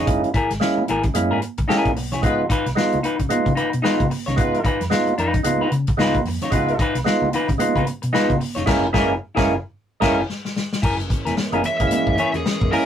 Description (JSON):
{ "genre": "funk", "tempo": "112 BPM", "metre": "4/4", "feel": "swing 60% on 16ths", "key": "unclear", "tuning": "A4 = 439 Hz", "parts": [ { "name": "semi-hollow electric guitar", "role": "accompaniment", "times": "0.0-12.9 s", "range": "Eb4 to Db5", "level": "-23 LUFS", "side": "left 3 dB", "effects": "none" }, { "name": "percussive tonewheel organ", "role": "stabs", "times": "0.0-12.9 s", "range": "Ab3 to Ab4", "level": "-21 LUFS", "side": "right 2 dB", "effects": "overdrive, stopped rotary speaker" }, { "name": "hollow-body short-scale fingered electric bass", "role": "bass", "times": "0.0-12.7 s", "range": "Fb1 to Db3", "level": "-26 LUFS", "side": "left 1 dB", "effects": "none" }, { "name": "warm soul drum kit", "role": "drums", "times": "0.1-12.9 s", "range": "crash cymbal, hi-hat, kick drum, snare drum", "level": "-23 LUFS", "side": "left 1 dB", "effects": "none" }, { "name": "congas", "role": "percussion", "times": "0.1-12.9 s", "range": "none", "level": "-30 LUFS", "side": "right 2 dB", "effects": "none" }, { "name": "mellow horn section", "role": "second line", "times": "2.2-10.2 s", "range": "Fb3 to Cb5", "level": "-27 LUFS", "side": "equal", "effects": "none" }, { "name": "warm studio string section", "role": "sustained chords", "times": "10.8-12.9 s", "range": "Fb3 to Db4", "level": "-30 LUFS", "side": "right 1 dB", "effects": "none" }, { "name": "fuzz lead guitar", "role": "melody", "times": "11.7-12.9 s", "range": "Ab4 to Fb5", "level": "-23 LUFS", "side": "equal", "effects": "distortion" } ], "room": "wet booth ambience, RT60 0.2 s", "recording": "rough rehearsal-room recording, warm saturation", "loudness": "-18 LUFS", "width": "side -9 dB against mid", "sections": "0.0-10.8 A section; 10.8-12.9 B section", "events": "band accent 8.7-10.8; drum fill 10.3-10.8", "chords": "0.1 Gb9; 2.2 Db9; 8.7 Gb9" }